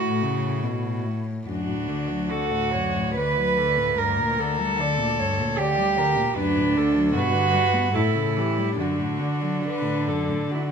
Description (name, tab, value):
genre	classical, lyrical piece for cello ensemble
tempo	74 BPM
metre	3/4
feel	uneven beats, rubato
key	D major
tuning	A4 = 440 Hz
part	warm cello	melody	0.0-10.7 s	A3 to D5	-29 LUFS	left 8 dB	none
part	warm cello	second line	0.0-10.7 s	D4 to B4	-24 LUFS	right 5 dB	none
part	warm cello	accompaniment	0.0-10.7 s	F#2 to B3	-28 LUFS	left 5 dB	none
part	warm cello	bass	0.0-10.7 s	D2 to D3	-29 LUFS	right 1 dB	none
room	moderate recital hall reverb, RT60 1.7 s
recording	close, detailed microphones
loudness	-21 LUFS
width	side -6 dB against mid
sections	0.0-10.7 A section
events	none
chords	0.0 D (rootless); 0.6 F#madd11/A; 1.5 D; 4.0 Gm/D; 6.4 D; 7.1 G; 7.9 A7; 8.8 D/F#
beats	0.63 | 1.48 2.30 3.16 | 3.98 4.79 5.58 | 6.36 7.15 7.95 | 8.79 9.64 10.50